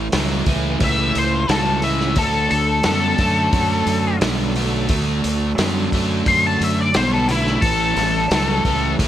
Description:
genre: blues rock power trio and southern rock.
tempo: 88 BPM.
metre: 4/4.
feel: straight.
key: unclear.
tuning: A4 = 440 Hz.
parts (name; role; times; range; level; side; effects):
tonewheel organ; sustained chords; 0.0-9.1 s; E3 to A4; -31 LUFS; right 6 dB; slow rotary speaker, overdrive.
biting overdriven guitar; riff; 0.0-9.1 s; A2 to B3; -22 LUFS; right 1 dB; none.
fuzz fingered electric bass; bass; 0.0-9.1 s; A1 to F#2; -23 LUFS; equal; overdrive.
vintage drum kit; drums; 0.1-9.1 s; hi-hat, kick drum, snare drum; -23 LUFS; equal; none.
octave-fuzz lead guitar; melody; 0.8-8.9 s; E4 to C6; -20 LUFS; left 2 dB; wah, distortion.
room: small room ambience.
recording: none.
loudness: -16 LUFS.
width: side -11 dB against mid.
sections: 0.0-9.1 A section.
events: none.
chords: 0.0 A; 2.2 D; 7.6 A.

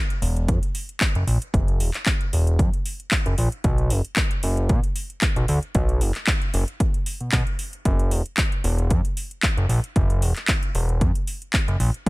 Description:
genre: nu-disco, nu disco.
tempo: 114 BPM.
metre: 4/4.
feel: swing 54% on 16ths.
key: F# mixolydian.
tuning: A4 = 437 Hz.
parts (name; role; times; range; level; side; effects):
house drum kit; drums; 0.1-12.1 s; handclaps, hi-hat; -27 LUFS; equal; overdrive.
fat analog bass; bass; 0.2-12.1 s; E1 to B2; -21 LUFS; equal; none.
electronic kick drum; drums; 0.5-12.1 s; none; -23 LUFS; equal; overdrive.
room: little or no reverb.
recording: none.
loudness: -20 LUFS.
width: side -22 dB against mid.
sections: 0.0-12.1 A section.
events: none.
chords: none.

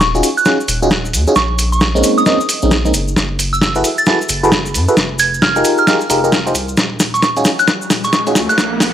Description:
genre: UK garage, two-step garage.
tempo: 133 BPM.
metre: 4/4.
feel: swing 62% on 16ths.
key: Eb dorian.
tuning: A4 = 440 Hz.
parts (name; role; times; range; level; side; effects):
soft synth bell; melody; 0.0-8.5 s; Db6 to A6; -17 LUFS; right 2 dB; chorus, phaser.
saturated sub bass; bass; 0.0-8.9 s; Eb1 to Gb2; -20 LUFS; equal; sidechain pumping.
boom bap sampler-style drum kit; drums; 0.0-8.9 s; hi-hat, snare drum; -16 LUFS; equal; none.
electronic kick drum; drums; 0.0-8.7 s; none; barely audible; none; none.
cabasa; percussion; 0.0-8.9 s; none; -24 LUFS; left 3 dB; none.
FM electric piano; stabs; 0.1-8.4 s; Ab3 to C5; -16 LUFS; equal; chorus, phaser, analog delay.
riser; sound effects; 7.6-8.9 s; none; -23 LUFS; equal; none.
room: light reverb.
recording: dry, gritty hardware recording, high-pass filter.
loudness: -11 LUFS.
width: side -10 dB against mid.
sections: 0.0-8.9 A section.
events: build-up 0.0-8.9; drum fill 0.0-8.9; riser 7.6-8.9.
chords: 0.0 Ebm11; 1.4 Bbm11; 2.9 Gbm11; 5.0 Fm11; 6.8 Ebm11.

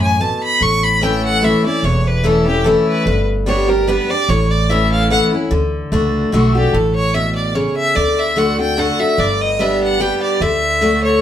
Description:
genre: bluegrass.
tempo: 147 BPM.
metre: 3/4.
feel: swing 54% on 8ths.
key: A mixolydian.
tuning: A4 = 439 Hz.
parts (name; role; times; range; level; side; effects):
clear fiddle; melody; 0.0-11.2 s; F#4 to C#6; -18 LUFS; equal; none.
picked steel-string acoustic guitar; accompaniment; 0.0-11.2 s; E2 to G4; -16 LUFS; left 1 dB; none.
upright bass; bass; 0.0-11.2 s; E1 to D2; -20 LUFS; right 1 dB; none.
room: wet studio reverb, RT60 0.6 s.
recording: band playing live in one room.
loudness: -13 LUFS.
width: side -10 dB against mid.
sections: 0.0-5.5 A section; 5.5-11.2 B section.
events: none.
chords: 0.0 D (rootless); 0.6 A; 3.1 G; 4.3 A; 5.5 D; 6.7 A; 8.0 D; 9.2 G; 10.4 D.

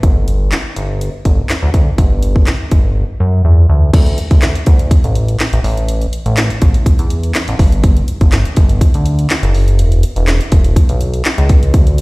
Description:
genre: dance-pop.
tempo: 123 BPM.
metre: 4/4.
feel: straight.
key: unclear.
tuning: A4 = 440 Hz.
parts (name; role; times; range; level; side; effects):
chorused synth bass; bass; 0.0-12.0 s; E1 to F#2; -12 LUFS; equal; sidechain pumping.
house drum kit; drums; 0.0-12.0 s; crash cymbal, handclaps, hi-hat, kick drum, snare drum; -12 LUFS; equal; none.
room: little or no reverb.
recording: played on a big sound system in a bare room, large studio reverb.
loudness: -10 LUFS.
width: side -24 dB against mid.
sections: 0.0-3.9 A section; 3.9-12.0 B section.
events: drums muted 3.0-3.9.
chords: none.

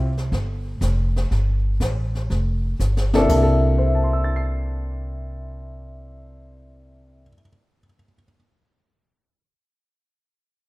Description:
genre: jazz piano trio.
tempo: 121 BPM.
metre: 4/4.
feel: swing 69% on 8ths.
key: C mixolydian.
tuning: A4 = 440 Hz.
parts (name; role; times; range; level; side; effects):
warm baby grand piano; melody; 0.0-0.1, 3.1-8.4 s; C3 to C7; -22 LUFS; left 1 dB; none.
upright bass; bass; 0.0-7.3 s; F1 to C2; -21 LUFS; equal; none.
jazz brush drum kit; drums; 0.2-3.7 s; brushed snare drum, crash cymbal, hi-hat, kick drum, snare drum; -29 LUFS; equal; none.
room: light reverb, small room reverb.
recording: rough home demo mix.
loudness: -19 LUFS.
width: side -20 dB against mid.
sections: 0.0-3.3 A section; 3.3-7.3 B section.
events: drum fill 2.8-3.3.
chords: 0.0 Dm11 (rootless); 1.3 G7sus2; 3.3 C13.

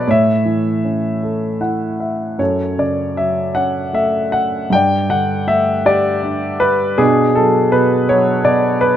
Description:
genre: classical, lyrical solo piano.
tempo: 52 BPM (dotted quarters).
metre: 6/8.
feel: uneven beats, rubato.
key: F# minor.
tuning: A4 = 440 Hz.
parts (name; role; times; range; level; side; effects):
warm baby grand piano; solo; 0.0-9.0 s; F#2 to G5; -14 LUFS; equal; none.
room: light reverb.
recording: none.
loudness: -14 LUFS.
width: side -10 dB against mid.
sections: 0.0-9.0 A section.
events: grand piano fill 1.2-2.4.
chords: 0.1 A; 2.4 F#m; 4.7 Gsus2; 7.0 Bm.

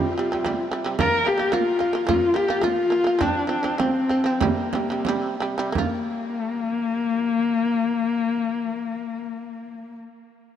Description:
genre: mongolian traditional, Mongolian folk.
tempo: 84-112 BPM.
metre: 4/4.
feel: straight.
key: Bb gong mode.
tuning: A4 = 440 Hz.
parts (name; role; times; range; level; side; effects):
warm horsehead fiddle; melody; 0.0-10.0 s; Bb3 to Bb4; -22 LUFS; left 3 dB; none.
shamisen; arpeggios; 0.0-10.0 s; C3 to F4; -27 LUFS; right 4 dB; none.
frame drum; percussion; 0.3-6.1 s; none; -28 LUFS; right 5 dB; none.
room: moderate huge ambient reverb, RT60 5.2 s.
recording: dark, warm production.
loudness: -21 LUFS.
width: side -9 dB against mid.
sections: 0.0-5.8 A section; 5.8-10.6 B section.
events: slowing down 1.0-5.8.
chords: 0.0 C5; 1.0 Bb5; 3.2 F5; 4.4 C5; 5.8 Bb5.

